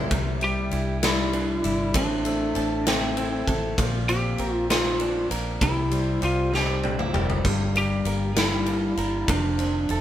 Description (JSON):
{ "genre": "six-eight pop ballad", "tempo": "65 BPM (dotted quarters)", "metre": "6/8", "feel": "straight", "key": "unclear", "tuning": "A4 = 442 Hz", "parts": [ { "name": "flamenco guitar", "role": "accompaniment", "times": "0.0-10.0 s", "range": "F2 to D4", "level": "-29 LUFS", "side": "left 4 dB", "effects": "none" }, { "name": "direct-recorded clean electric guitar", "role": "arpeggios", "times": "0.0-10.0 s", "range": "F3 to Bb4", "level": "-33 LUFS", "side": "right 5 dB", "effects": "none" }, { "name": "vintage muted fingered electric bass", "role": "bass", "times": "0.0-10.0 s", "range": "F1 to C2", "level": "-29 LUFS", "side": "equal", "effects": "none" }, { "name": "huge arena drum kit", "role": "drums", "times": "0.1-10.0 s", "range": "kick drum, ride cymbal, snare drum, splash cymbal, toms", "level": "-27 LUFS", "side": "equal", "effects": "none" }, { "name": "lightly driven lead guitar", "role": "melody", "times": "0.4-10.0 s", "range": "C4 to G4", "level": "-26 LUFS", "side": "right 1 dB", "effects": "none" } ], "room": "moderate studio reverb, RT60 0.7 s", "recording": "band playing live in one room", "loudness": "-22 LUFS", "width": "side -11 dB against mid", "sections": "0.1-10.0 A section", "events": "drum fill 6.5-7.5", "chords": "0.1 Cadd9; 1.9 Am; 3.8 Bbadd9; 5.6 C; 7.5 Gm; 9.3 F7" }